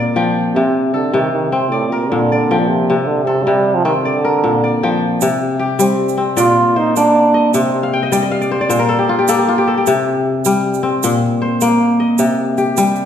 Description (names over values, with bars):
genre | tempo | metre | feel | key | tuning
west african traditional, West African string and xylophone music | 103 BPM (dotted quarters) | 12/8 | straight | C dorian | A4 = 444 Hz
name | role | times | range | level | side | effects
kora | arpeggios | 0.0-13.1 s | Bb2 to G5 | -14 LUFS | left 2 dB | none
clear trombone | melody | 0.5-8.1 s | A2 to F4 | -16 LUFS | right 3 dB | none
tube shaker | percussion | 5.2-13.0 s | none | -24 LUFS | right 9 dB | none
room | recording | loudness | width
wet recital hall reverb, RT60 1.5 s | recorded in a church or concert hall | -12 LUFS | side -9 dB against mid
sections
0.0-5.2 A section; 5.2-13.1 B section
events
kora fill 7.8-9.9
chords
0.0 Bb; 0.6 C5; 1.7 Bb; 2.9 C5; 4.0 Bb; 5.2 C5; 6.4 Bb; 7.5 Cm; 8.7 N.C.; 9.9 C5; 11.0 Bbsus24; 12.2 Cm